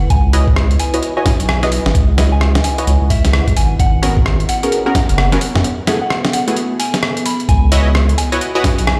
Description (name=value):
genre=UK garage, two-step garage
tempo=130 BPM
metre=4/4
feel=swing 62% on 16ths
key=C# minor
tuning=A4 = 440 Hz
part: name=soft synth bell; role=melody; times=0.0-9.0 s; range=E5 to B5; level=-26 LUFS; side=equal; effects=chorus, phaser, delay
part: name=saturated sub bass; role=bass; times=0.0-9.0 s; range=F#1 to F#2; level=-16 LUFS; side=equal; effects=none
part: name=deep dark ambient pad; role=texture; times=0.0-9.0 s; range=B3 to G#5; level=-27 LUFS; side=equal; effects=chorus, built-in reverb, sidechain pumping
part: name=boom bap sampler-style drum kit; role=drums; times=0.1-9.0 s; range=hi-hat, rim click, snare drum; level=-22 LUFS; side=equal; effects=none
part: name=electronic kick drum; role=drums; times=0.1-8.8 s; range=none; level=-17 LUFS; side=equal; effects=none
part: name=punchy chord stab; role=stabs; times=0.3-8.7 s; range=A3 to D#5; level=-22 LUFS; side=equal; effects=chorus, digital delay
room=light reverb, digital ambience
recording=played on a big sound system in a bare room, large studio reverb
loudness=-15 LUFS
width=mono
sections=0.0-7.5 A section; 7.5-9.0 B section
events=break 5.6-7.5; drop 7.5-9.0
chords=0.1 C#m11; 3.6 G#m11; 5.4 F#m11; 7.5 C#m11